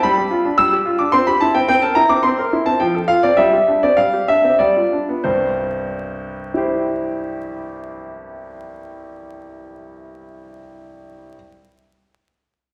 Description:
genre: classical-period piano sonatina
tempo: 91-111 BPM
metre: 3/4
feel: straight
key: C major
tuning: A4 = 439 Hz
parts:
  - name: warm concert grand piano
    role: solo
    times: 0.0-11.4 s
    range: C2 to E6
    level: -18 LUFS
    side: equal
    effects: none
room: wet recital hall reverb, RT60 1.4 s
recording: vinyl crackle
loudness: -17 LUFS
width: mono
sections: 0.0-5.2 A section; 5.2-9.1 B section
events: slowing down 0.9-5.2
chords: 0.0 G7; 1.1 C; 1.7 C7; 2.8 F; 3.4 Gsus4; 4.6 G7; 5.2 C

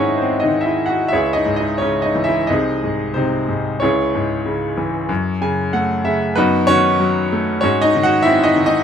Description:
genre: classical, lyrical solo piano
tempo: 86-97 BPM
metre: 4/4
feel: rubato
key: C# minor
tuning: A4 = 440 Hz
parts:
  - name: bright baby grand piano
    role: solo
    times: 0.0-8.8 s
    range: B#1 to G#5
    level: -15 LUFS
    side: equal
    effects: none
room: light reverb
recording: minimal, uncompressed stereo recording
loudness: -15 LUFS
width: side -8 dB against mid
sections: 0.0-8.8 A section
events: grand piano fill 5.1-6.4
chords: 0.0 G#; 1.1 C#m; 2.5 G#/B#; 3.8 C#m; 5.1 F#madd9; 6.4 D#dim/F#; 7.6 G#7

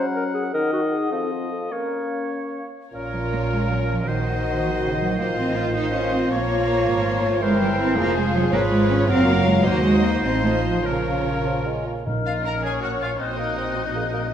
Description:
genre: quick classical-period movement for symphony orchestra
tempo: 97-109 BPM (dotted quarters)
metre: 6/8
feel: rubato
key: Bb minor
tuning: A4 = 440 Hz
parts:
  - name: clear oboe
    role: second line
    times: 0.0-14.3 s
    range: Eb4 to Gb5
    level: -31 LUFS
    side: equal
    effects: none
  - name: dark clarinet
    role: second line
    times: 0.0-14.3 s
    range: Db4 to Eb5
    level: -30 LUFS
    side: left 2 dB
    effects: none
  - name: mellow hollow large flute ensemble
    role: second line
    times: 0.0-14.3 s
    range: C5 to Gb6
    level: -33 LUFS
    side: left 3 dB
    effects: none
  - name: dark bassoon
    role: accompaniment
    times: 0.0-14.2 s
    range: Bb2 to Eb4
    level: -30 LUFS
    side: right 1 dB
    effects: none
  - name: dark French horn section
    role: sustained chords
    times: 0.0-14.3 s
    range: C4 to Db5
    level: -29 LUFS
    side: left 3 dB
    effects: none
  - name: dark chamber violin section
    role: melody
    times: 2.9-14.3 s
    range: C5 to Bb5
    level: -31 LUFS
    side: left 6 dB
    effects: none
  - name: rich chamber violin section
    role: second line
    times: 2.9-14.3 s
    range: Eb4 to Db5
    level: -32 LUFS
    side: left 4 dB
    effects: none
  - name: warm chamber viola section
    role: accompaniment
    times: 2.9-14.3 s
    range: E4 to Db5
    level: -30 LUFS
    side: right 3 dB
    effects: none
  - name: clear chamber double bass section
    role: bass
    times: 2.9-14.3 s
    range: F1 to Eb2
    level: -26 LUFS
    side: right 2 dB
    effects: none
  - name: warm chamber cello section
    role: bass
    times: 3.1-14.3 s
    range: Bb2 to F4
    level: -24 LUFS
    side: right 2 dB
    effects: none
  - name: timpani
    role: percussion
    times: 12.1-12.6 s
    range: Bb2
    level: -31 LUFS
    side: equal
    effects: none
room: wet scoring stage reverb, RT60 1.5 s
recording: none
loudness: -19 LUFS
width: side -9 dB against mid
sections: 0.0-2.9 A section; 2.9-12.1 B section; 12.1-14.3 B section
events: none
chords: 0.0 Gb; 0.5 Ebm; 1.1 F5; 1.7 Bbm; 4.1 Cm7b5/Bb; 5.2 F7/A; 6.3 Bbm; 7.4 C7/G; 8.0 Fm; 8.5 Db7/Ab; 9.1 Gbmaj7; 9.7 Cm7b5/Eb; 10.2 F7/A; 10.9 Bbm; 13.2 Cm7b5/Bb

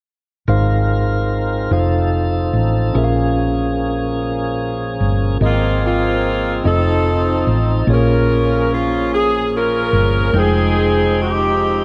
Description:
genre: slow gospel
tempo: 49 BPM (dotted quarters)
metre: 6/8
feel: straight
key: Ab major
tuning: A4 = 439 Hz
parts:
  - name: bright tine electric piano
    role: accompaniment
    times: 0.5-11.8 s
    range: Ab2 to G5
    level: -22 LUFS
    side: equal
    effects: none
  - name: tonewheel organ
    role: sustained chords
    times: 0.5-11.8 s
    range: F3 to G5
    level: -27 LUFS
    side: equal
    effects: fast rotary speaker, overdrive
  - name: hollow-body short-scale fingered electric bass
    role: bass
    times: 0.5-11.8 s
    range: F1 to Bb1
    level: -21 LUFS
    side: equal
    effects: none
  - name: clear saxophone section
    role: melody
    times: 5.4-11.8 s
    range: Bb3 to Bb4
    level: -20 LUFS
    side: equal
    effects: none
room: light reverb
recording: none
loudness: -17 LUFS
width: mono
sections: 0.5-5.4 A section; 5.4-11.8 B section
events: none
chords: 0.5 Ab69; 1.7 F7; 3.0 Bbm7; 5.4 Ab69; 6.7 F7; 7.9 Bbm7; 10.3 Fm9

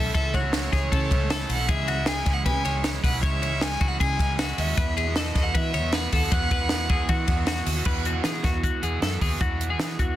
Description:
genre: jangly indie pop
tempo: 156 BPM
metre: 4/4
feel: straight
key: E major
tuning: A4 = 435 Hz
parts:
  - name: warm violin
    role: melody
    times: 0.0-7.4 s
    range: C#5 to G#5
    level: -30 LUFS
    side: equal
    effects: tape echo
  - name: crunchy overdriven guitar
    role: accompaniment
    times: 0.0-10.2 s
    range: E2 to F#4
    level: -32 LUFS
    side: right 9 dB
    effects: none
  - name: twelve-string electric guitar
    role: arpeggios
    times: 0.0-10.2 s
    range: F#4 to C#5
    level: -30 LUFS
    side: left 6 dB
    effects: none
  - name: vintage muted fingered electric bass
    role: bass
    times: 0.0-10.2 s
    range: B1 to E3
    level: -29 LUFS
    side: equal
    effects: none
  - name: compact cocktail drum kit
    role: drums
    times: 0.1-10.1 s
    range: crash cymbal, hi-hat, kick drum, ride cymbal, snare drum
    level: -25 LUFS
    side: equal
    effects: none
  - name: tambourine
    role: percussion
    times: 0.1-7.8 s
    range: none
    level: -45 LUFS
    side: right 7 dB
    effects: none
room: little or no reverb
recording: dense, heavily limited modern master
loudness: -22 LUFS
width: side -13 dB against mid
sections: 0.0-7.9 A section; 7.9-10.2 B section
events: none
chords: 0.0 A; 1.7 C#m; 4.8 Esus2

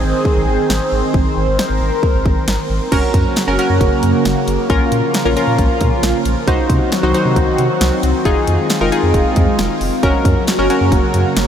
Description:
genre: synth-pop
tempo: 135 BPM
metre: 4/4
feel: straight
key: unclear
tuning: A4 = 441 Hz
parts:
  - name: phased analog pad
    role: sustained chords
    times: 0.0-11.5 s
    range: Db3 to C5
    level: -18 LUFS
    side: right 1 dB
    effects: phaser, chorus
  - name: sub bass with octave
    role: bass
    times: 0.0-11.5 s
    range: F1 to C3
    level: -19 LUFS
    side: equal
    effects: none
  - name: house drum kit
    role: drums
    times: 0.3-11.5 s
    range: crash cymbal, hi-hat, kick drum, snare drum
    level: -18 LUFS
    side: equal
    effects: none
  - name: funky polysynth comp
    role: accompaniment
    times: 2.9-11.4 s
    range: Db4 to C5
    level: -17 LUFS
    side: left 1 dB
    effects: chorus
room: moderate huge ambient reverb, RT60 7.3 s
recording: dreamy mix soaked in reverb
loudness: -12 LUFS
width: side -9 dB against mid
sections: 0.0-2.9 A section; 2.9-11.5 B section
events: none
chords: 0.0 Ab; 2.9 Gb; 4.7 Bbm; 6.5 Cdim; 8.3 Fm7; 10.0 Gb

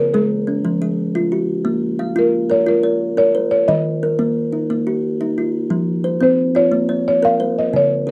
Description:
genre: southern african traditional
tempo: 119 BPM (dotted quarters)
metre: 12/8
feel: straight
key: Bb equiheptatonic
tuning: A4 = 440 Hz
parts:
  - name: buzzing marimba with soft mallets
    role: melody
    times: 0.0-8.1 s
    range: Ab4+29c to F5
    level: -19 LUFS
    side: equal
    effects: none
  - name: kalimba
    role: arpeggios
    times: 0.0-8.1 s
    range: Db3+43c to F5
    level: -20 LUFS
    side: equal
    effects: none
room: moderate studio reverb, RT60 0.5 s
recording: dark, warm production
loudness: -18 LUFS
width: mono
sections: 0.0-8.1 A section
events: none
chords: 0.0 Db5; 0.6 Fm; 1.7 Bbm; 3.7 Eb; 5.7 F5; 6.7 Bbm

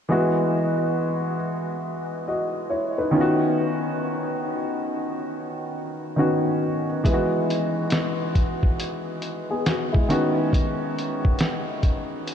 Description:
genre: lo-fi hip hop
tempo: 69 BPM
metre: 4/4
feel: swing 63% on 16ths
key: unclear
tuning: A4 = 441 Hz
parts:
  - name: warm upright piano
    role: accompaniment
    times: 0.1-12.3 s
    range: D#3 to D#5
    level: -23 LUFS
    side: equal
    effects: none
  - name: lo-fi sampler-style drum kit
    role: drums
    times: 7.0-12.3 s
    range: hi-hat, kick drum, snare drum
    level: -23 LUFS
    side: equal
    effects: none
room: wet huge ambient reverb, RT60 8.2 s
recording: dreamy mix soaked in reverb, cassette tape, lossy compression artefacts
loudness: -22 LUFS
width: side -8 dB against mid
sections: 0.1-12.3 A section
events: none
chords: 0.1 F#9sus4; 3.1 C#9sus4; 7.0 F#9sus4; 10.1 C#9sus4

